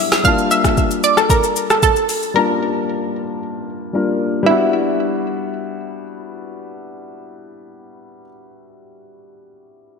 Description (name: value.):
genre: amapiano.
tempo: 114 BPM.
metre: 4/4.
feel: straight.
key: unclear.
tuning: A4 = 441 Hz.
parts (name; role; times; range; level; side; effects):
analog pluck; melody; 0.0-8.2 s; E4 to F5; -17 LUFS; right 1 dB; chorus, ping-pong delay.
dark grand piano; accompaniment; 0.0-10.0 s; F#3 to A5; -21 LUFS; left 4 dB; none.
smooth R&B drum kit; drums; 0.1-2.3 s; hi-hat, kick drum, rim click, shaker, snare drum; -18 LUFS; equal; none.
room: wet lush hall reverb, RT60 2.2 s.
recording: dreamy mix soaked in reverb.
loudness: -15 LUFS.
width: side -5 dB against mid.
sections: 0.0-4.5 A section; 4.5-8.7 B section.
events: drop 0.0-4.5.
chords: 0.2 Gm9; 4.5 Em9.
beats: | 0.25 0.77 1.30 1.83 | 2.35 2.88 3.40 3.93 | 4.46 4.98 5.51 6.04 | 6.56 7.09 7.62 8.14.